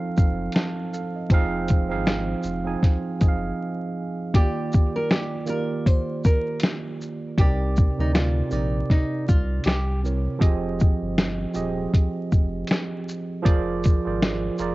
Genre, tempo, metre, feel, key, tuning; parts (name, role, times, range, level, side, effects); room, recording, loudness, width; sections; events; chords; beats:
lo-fi hip hop; 79 BPM; 4/4; swing 61% on 16ths; F phrygian; A4 = 441 Hz
tine electric piano; accompaniment; 0.0-14.7 s; C3 to Bb5; -27 LUFS; right 3 dB; medium stereo tremolo, cassette tape
warm sub bass; bass; 0.2-14.7 s; Eb1 to D2; -27 LUFS; equal
lo-fi sampler-style drum kit; drums; 0.2-14.7 s; hi-hat, kick drum, shaker, snare drum; -20 LUFS; equal; cassette tape
nylon-string guitar; melody; 4.3-10.0 s; Eb4 to C5; -30 LUFS; left 1 dB; cassette tape
little or no reverb; home recording on cassette, vinyl crackle, nothing above 7.8 kHz; -21 LUFS; side -19 dB against mid
0.0-4.3 A section; 4.3-14.7 B section
break 3.6-4.3; tine electric piano fill 14.2-14.7
0.0 F7; 1.3 Fm7; 4.3 Ebmaj9; 7.4 Cm9; 9.7 C7b9; 10.4 Fm9; 13.5 Bb9/F
0.54 | 1.30 2.06 2.82 3.58 | 4.34 5.10 5.86 6.62 | 7.38 8.14 8.90 9.66 | 10.42 11.18 11.94 12.70 | 13.46 14.21